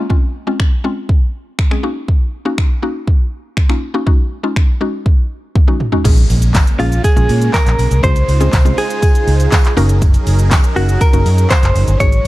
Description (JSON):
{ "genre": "dance-pop", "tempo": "121 BPM", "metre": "4/4", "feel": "straight", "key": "unclear", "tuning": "A4 = 440 Hz", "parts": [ { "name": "mallet-like synth pluck", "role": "accompaniment", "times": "0.0-12.3 s", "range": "Ab3 to Bb4", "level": "-20 LUFS", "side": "left 2 dB", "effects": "chorus, sidechain pumping" }, { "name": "pop drum kit", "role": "drums", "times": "0.1-12.3 s", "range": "crash cymbal, finger snaps, handclaps, hi-hat, kick drum, shaker, snare drum, toms", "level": "-13 LUFS", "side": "equal", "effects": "none" }, { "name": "supersaw chords", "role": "sustained chords", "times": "6.1-12.3 s", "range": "Db3 to Bb4", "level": "-24 LUFS", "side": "right 2 dB", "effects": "sidechain pumping" }, { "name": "vintage muted fingered electric bass", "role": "bass", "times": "6.1-12.3 s", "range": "Gb1 to Bb2", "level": "-13 LUFS", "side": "equal", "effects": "sidechain pumping" }, { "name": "impact", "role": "sound effects", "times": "6.1-8.0 s", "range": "none", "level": "-23 LUFS", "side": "equal", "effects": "none" }, { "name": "tambourine", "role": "percussion", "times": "6.3-12.3 s", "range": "none", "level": "-37 LUFS", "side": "right 9 dB", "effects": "none" }, { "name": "direct-recorded clean electric guitar", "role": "melody", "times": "6.8-12.3 s", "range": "F4 to Db5", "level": "-18 LUFS", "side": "right 1 dB", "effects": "tremolo, ping-pong delay" } ], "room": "little or no reverb", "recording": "dark, warm production", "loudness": "-11 LUFS", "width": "side -17 dB against mid", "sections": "0.0-6.1 A section; 6.1-12.3 B section", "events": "drum fill 5.6-6.1; impact 6.1-8.0", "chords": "0.1 Dbmaj7; 1.8 Gb6; 4.1 Ab7sus4; 6.1 Bbm7; 8.0 Dbmaj7; 9.8 Gb6" }